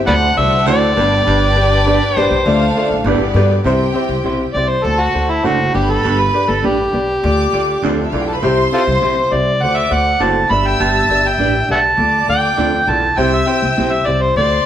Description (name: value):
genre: soul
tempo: 101 BPM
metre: 4/4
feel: straight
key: C major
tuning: A4 = 439 Hz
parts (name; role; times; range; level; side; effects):
- warm studio violin section; second line; 0.0-14.7 s; B3 to E6; -22 LUFS; left 1 dB; none
- upright bass; bass; 0.0-14.6 s; F#1 to G2; -18 LUFS; equal; none
- overdriven harmonica; melody; 0.1-14.7 s; E4 to B5; -15 LUFS; equal; none
- warm upright piano; accompaniment; 0.1-14.7 s; G2 to D5; -20 LUFS; left 2 dB; none
- warm baritone saxophone; riff; 0.7-13.4 s; D2 to C3; -23 LUFS; right 5 dB; none
- electric guitar through a small old amp; stabs; 0.7-13.9 s; A3 to D5; -24 LUFS; right 6 dB; none
room: wet large studio reverb, RT60 1.4 s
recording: band playing live in one room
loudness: -12 LUFS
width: side -10 dB against mid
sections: 0.0-3.7 A section; 3.7-14.7 B section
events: harmonica solo 3.7-14.7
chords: 0.1 D7; 1.0 G; 2.5 Dm; 3.1 G; 3.7 C; 4.8 D7; 5.7 G; 7.2 Dm; 8.4 C; 9.6 D7; 10.5 G; 12.0 Dm; 13.2 C